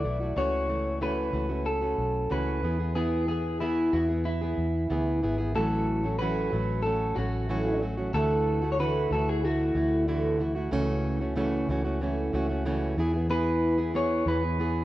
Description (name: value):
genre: acoustic pop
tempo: 93 BPM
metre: 4/4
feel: straight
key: A major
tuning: A4 = 440 Hz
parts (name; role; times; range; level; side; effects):
- electric guitar at the edge of break-up; melody; 0.0-14.8 s; E4 to D5; -30 LUFS; equal; none
- fingerpicked plugged-in steel-string acoustic guitar; accompaniment; 0.0-14.8 s; A2 to G#4; -28 LUFS; right 1 dB; none
- vintage muted fingered electric bass; bass; 0.0-14.8 s; G#1 to E2; -30 LUFS; equal; none
room: light reverb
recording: worn, warbling old tape, cassette tape, warbly pitch drift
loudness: -25 LUFS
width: side -15 dB against mid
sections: 0.0-5.5 A section; 5.5-14.8 B section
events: none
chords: 0.4 A6/C#; 2.6 E; 5.5 A6; 8.1 Dadd9; 10.7 A6/C#; 13.0 E